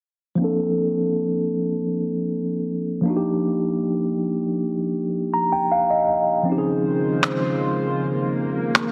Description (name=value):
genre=contemporary R&B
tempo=79 BPM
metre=4/4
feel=straight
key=Bb major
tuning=A4 = 440 Hz
part: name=mellow tine electric piano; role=accompaniment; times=0.4-8.9 s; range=F3 to Bb5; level=-23 LUFS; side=equal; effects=low-pass filter
part: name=chorused pulse-width pad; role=sustained chords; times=6.5-8.9 s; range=Db3 to C5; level=-28 LUFS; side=equal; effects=low-pass filter
part: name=swell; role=sound effects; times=7.9-8.9 s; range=none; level=-32 LUFS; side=equal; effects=none
part: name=electronic finger snaps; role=drums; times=7.2-8.9 s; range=none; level=-24 LUFS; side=equal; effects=none
room=moderate lush hall reverb, RT60 2.2 s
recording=heavily compressed radio sound, multiband compression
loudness=-22 LUFS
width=mono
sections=0.4-8.9 A section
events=filter sweep 0.4-8.9; tine electric piano fill 5.0-6.5; swell 7.9-8.9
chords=0.4 Bbmaj9; 3.1 Ebmaj9; 6.5 Dbmaj9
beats=| 0.39 1.15 1.91 2.67 | 3.43 4.19 4.95 5.71 | 6.47 7.23 7.99 8.75